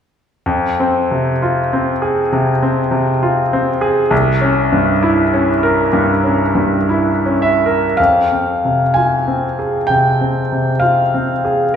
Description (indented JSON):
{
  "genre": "classical, romantic nocturne for solo piano",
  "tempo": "51-68 BPM",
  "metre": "4/4",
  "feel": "rubato",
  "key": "F minor",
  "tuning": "A4 = 440 Hz",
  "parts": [
    { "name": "bright grand piano", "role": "solo", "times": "0.5-11.8 s", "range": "C2 to Ab5", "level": "-13 LUFS", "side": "equal", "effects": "none" }
  ],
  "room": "wet recital hall reverb, RT60 1.4 s",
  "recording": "recorded in a church or concert hall",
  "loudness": "-13 LUFS",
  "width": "side -8 dB against mid",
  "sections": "0.5-8.0 A section; 8.0-11.8 B section",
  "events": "none",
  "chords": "0.5 Fm; 4.1 C7b9; 8.0 Fm",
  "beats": "| 0.46 1.42 2.33 3.23 | 4.12 5.03 5.92 6.89 | 7.98 8.94 9.88 10.83"
}